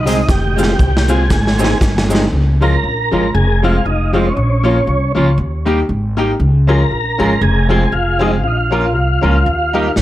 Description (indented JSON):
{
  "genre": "ska",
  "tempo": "118 BPM",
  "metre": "4/4",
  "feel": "swing 57% on 8ths",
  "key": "unclear",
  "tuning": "A4 = 440 Hz",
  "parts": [
    { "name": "tonewheel organ", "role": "melody", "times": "0.0-9.9 s", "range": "C4 to Bb4", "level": "-18 LUFS", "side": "equal", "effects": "chorus vibrato, slow rotary speaker, tape echo" },
    { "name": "upright bass", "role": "bass", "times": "0.0-10.0 s", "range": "F1 to Eb2", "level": "-15 LUFS", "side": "equal", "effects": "none" },
    { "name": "clean electric guitar", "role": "accompaniment", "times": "0.1-9.9 s", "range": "F3 to Ab4", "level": "-21 LUFS", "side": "right 3 dB", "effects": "none" },
    { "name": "bright upright piano", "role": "stabs", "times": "0.1-9.9 s", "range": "Ab3 to Bb4", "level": "-20 LUFS", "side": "left 3 dB", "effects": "none" },
    { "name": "raw garage drum kit", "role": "drums", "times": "0.1-2.3, 10.0 s", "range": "hi-hat, kick drum, snare drum", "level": "-16 LUFS", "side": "equal", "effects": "tape echo" },
    { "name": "cabasa", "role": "percussion", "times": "0.1-2.2 s", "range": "none", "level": "-33 LUFS", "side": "right 4 dB", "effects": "none" }
  ],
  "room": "light reverb",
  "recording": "none",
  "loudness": "-12 LUFS",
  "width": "side -14 dB against mid",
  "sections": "0.0-2.3 A section; 2.3-10.0 B section",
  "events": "drum fill 0.3-2.3",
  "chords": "0.0 Fm; 1.3 Ab; 2.3 Db; 3.3 Fm; 4.4 Bbm; 5.4 Eb; 6.4 Db; 7.4 Fm; 8.4 Bbm; 9.5 Eb"
}